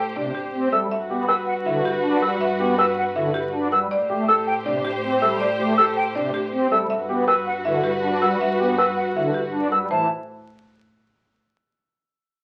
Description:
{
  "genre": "classical, minimalist pattern music",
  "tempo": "160 BPM",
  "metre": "4/4",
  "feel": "straight",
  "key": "A dorian",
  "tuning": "A4 = 439 Hz",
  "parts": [
    { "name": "buzzing marimba with hard mallets", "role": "melody", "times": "0.0-10.1 s", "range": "G4 to G5", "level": "-31 LUFS", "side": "equal", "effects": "none" },
    { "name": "clear studio string section", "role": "sustained chords", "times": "0.0-9.7 s", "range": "F#4 to C5", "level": "-28 LUFS", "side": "equal", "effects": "none" },
    { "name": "bright concert flute", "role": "arpeggios", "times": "0.0-10.1 s", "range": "F#5 to E6", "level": "-23 LUFS", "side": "equal", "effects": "none" },
    { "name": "warm baby grand piano", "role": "arpeggios", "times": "0.0-10.1 s", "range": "D4 to B4", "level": "-30 LUFS", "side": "equal", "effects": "none" },
    { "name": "rich studio double bass section", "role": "bass", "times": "0.0-10.1 s", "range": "G2 to A2", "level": "-36 LUFS", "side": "equal", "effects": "none" },
    { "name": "pipe organ, strings celeste", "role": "accompaniment", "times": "0.2-10.1 s", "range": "C3 to D4", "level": "-28 LUFS", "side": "equal", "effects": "none" }
  ],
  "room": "wet large studio reverb, RT60 0.8 s",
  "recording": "very old 78 rpm record, vinyl crackle",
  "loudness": "-22 LUFS",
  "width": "mono",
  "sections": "0.0-9.9 A section; 9.9-11.4 B section",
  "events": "none",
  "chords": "0.0 Am7; 0.9 Gmaj7; 3.9 Am7; 6.9 Gmaj7; 9.9 A5",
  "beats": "0.16 0.53 | 0.91 1.28 1.66 2.03 | 2.41 2.78 3.16 3.53 | 3.91 4.28 4.66 5.03 | 5.41 5.78 6.16 6.53 | 6.91 7.28 7.66 8.03 | 8.41 8.78 9.16 9.53 | 9.91"
}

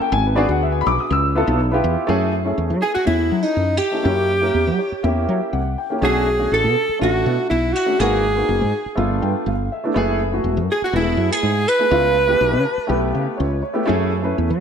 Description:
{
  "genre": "jazz",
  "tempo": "122 BPM",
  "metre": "4/4",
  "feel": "straight",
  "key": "unclear",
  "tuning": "A4 = 440 Hz",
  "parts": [
    { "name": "dark baby grand piano", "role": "accompaniment", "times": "0.0-14.5 s", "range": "A3 to E6", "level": "-22 LUFS", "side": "left 1 dB", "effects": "lush chorus" },
    { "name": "woody fretless electric bass", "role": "bass", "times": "0.0-14.6 s", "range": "E1 to F#3", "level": "-20 LUFS", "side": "equal", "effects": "analog chorus" },
    { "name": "clear alto saxophone", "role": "melody", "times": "2.8-13.2 s", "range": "D#4 to B4", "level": "-20 LUFS", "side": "right 1 dB", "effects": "none" },
    { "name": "archtop guitar, miked and amplified", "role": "second line", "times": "2.8-13.2 s", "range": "D#4 to B4", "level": "-25 LUFS", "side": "right 2 dB", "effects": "analog chorus" }
  ],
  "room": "moderate lush hall reverb, RT60 1.9 s, small room ambience",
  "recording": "bright 1980s-style digital production",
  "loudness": "-16 LUFS",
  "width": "side -7 dB against mid",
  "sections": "0.0-2.1 A section; 2.1-14.6 B section",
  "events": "grand piano fill 4.5-6.0, 9.0-10.0, 12.4-13.9",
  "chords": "0.1 G#m7b5; 1.1 C#7alt; 2.1 F#m9; 4.1 F#7b9; 6.0 Bm9; 8.0 G#m9; 9.0 G9; 10.0 F#m11; 11.9 C#7alt; 13.9 F#m9",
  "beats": "| 0.12 0.61 1.10 1.59 | 2.08 2.58 3.07 3.56 | 4.05 4.54 5.04 5.53 | 6.02 6.51 7.00 7.49 | 7.99 8.48 8.97 9.46 | 9.95 10.44 10.94 11.43 | 11.92 12.41 12.90 13.39 | 13.88 14.37"
}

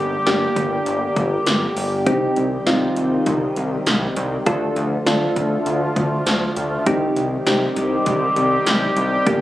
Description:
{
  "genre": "synth-pop",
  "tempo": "100 BPM",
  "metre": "4/4",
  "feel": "straight",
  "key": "unclear",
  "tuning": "A4 = 438 Hz",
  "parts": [
    { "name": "soft electric-piano-like synth keys", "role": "accompaniment", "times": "0.0-9.4 s", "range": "Bb3 to A4", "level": "-21 LUFS", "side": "equal", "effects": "chorus, shimmer reverb" },
    { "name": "sweeping resonant pad", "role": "sustained chords", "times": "0.0-9.4 s", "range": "D3 to G4", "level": "-22 LUFS", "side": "equal", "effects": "chorus, phaser, shimmer reverb" },
    { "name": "chorused synth bass", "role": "bass", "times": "0.0-9.4 s", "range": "G1 to D2", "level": "-24 LUFS", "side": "left 1 dB", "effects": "none" },
    { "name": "80s electronic pad drums", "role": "drums", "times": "0.3-9.4 s", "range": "hi-hat, kick drum, snare drum", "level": "-23 LUFS", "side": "equal", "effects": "none" }
  ],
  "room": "moderate plate reverb, RT60 1.8 s",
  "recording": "recorded on a phone in the room, club ambience",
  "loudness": "-17 LUFS",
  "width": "side -14 dB against mid",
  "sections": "0.0-9.4 A section",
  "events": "none",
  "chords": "0.0 Gm; 2.1 Cm; 4.5 Dm; 6.9 Cm",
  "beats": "0.27 0.86 1.47 | 2.06 2.67 3.27 3.87 | 4.46 5.07 5.67 6.26 | 6.87 7.46 8.06 8.66 | 9.27"
}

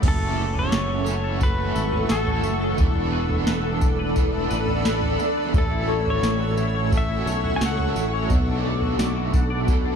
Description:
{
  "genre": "dream pop",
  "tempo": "87 BPM",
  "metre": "4/4",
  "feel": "straight",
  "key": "F# minor",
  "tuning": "A4 = 440 Hz",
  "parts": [
    { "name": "crunchy overdriven guitar", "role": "accompaniment", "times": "0.0-10.0 s", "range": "F#2 to A4", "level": "-29 LUFS", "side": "right 5 dB", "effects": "tremolo, lush chorus" },
    { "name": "granular cloud pad", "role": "sustained chords", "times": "0.0-10.0 s", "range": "A4 to E6", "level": "-27 LUFS", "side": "left 1 dB", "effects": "built-in reverb" },
    { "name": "clean electric guitar", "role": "arpeggios", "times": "0.0-10.0 s", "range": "F#2 to D5", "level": "-29 LUFS", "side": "left 5 dB", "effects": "analog chorus, ping-pong delay" },
    { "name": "sustaining fretless electric bass", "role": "bass", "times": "0.0-10.0 s", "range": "E1 to C#2", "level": "-26 LUFS", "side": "equal", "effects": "none" },
    { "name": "soft vintage rhythm box", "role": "drums", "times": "0.0-9.8 s", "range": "crash cymbal, kick drum, snare drum, tambourine, toms", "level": "-24 LUFS", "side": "equal", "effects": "overdrive" },
    { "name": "pedal steel guitar", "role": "melody", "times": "0.1-8.1 s", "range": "A4 to G#5", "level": "-30 LUFS", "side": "left 1 dB", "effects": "ping-pong delay" }
  ],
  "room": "little or no reverb",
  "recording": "dark, warm production",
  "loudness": "-20 LUFS",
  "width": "side -7 dB against mid",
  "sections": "0.0-10.0 A section",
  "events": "none",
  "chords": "0.0 F#m7; 2.8 E7sus4; 5.5 A6; 8.3 Bm7",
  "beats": "| 0.03 0.71 1.40 2.09 | 2.78 3.47 4.16 4.85 | 5.54 6.23 6.92 7.61 | 8.30 8.99 9.68"
}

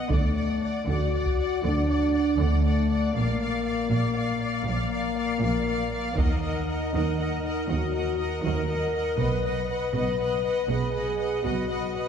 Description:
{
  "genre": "cinematic, epic orchestral film score",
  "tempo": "80 BPM (dotted quarters)",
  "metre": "12/8",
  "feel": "straight",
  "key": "Eb harmonic minor",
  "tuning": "A4 = 440 Hz",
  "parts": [
    { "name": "rich symphonic violin section", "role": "melody", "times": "0.0-12.1 s", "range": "F5 to F#5", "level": "-39 LUFS", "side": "left 3 dB", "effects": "none" },
    { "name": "warm symphonic violin section", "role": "second line", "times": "0.0-12.1 s", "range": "D5 to F#5", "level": "-35 LUFS", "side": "left 1 dB", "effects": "none" },
    { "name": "rich symphonic viola section", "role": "accompaniment", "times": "0.0-12.1 s", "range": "Bb4 to D#5", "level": "-35 LUFS", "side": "left 1 dB", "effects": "none" },
    { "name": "warm French horn section", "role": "sustained chords", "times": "0.0-12.1 s", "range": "A3 to B4", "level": "-28 LUFS", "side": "left 3 dB", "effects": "none" },
    { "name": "rich symphonic cello section", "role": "bass", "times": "0.1-12.1 s", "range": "Bb2 to Eb3", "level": "-33 LUFS", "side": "right 3 dB", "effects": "none" },
    { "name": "rich symphonic double bass section", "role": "bass", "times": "0.1-12.1 s", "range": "Bb1 to Eb2", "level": "-29 LUFS", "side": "right 2 dB", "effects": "none" },
    { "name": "solo taiko drums", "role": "drums", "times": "0.1-1.5, 6.2-7.1 s", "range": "none", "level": "-28 LUFS", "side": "equal", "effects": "none" }
  ],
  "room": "wet scoring stage reverb, RT60 2.1 s",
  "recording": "heard from further back in the room",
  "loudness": "-23 LUFS",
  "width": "side -7 dB against mid",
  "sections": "0.0-12.1 A section",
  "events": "none",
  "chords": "0.1 D; 3.2 Bb; 6.2 Ebm; 9.2 B",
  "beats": "| 0.12 0.89 1.65 2.40 | 3.16 3.91 4.67 5.42 | 6.18 6.94 7.69 8.44 | 9.19 9.94 10.69 11.45"
}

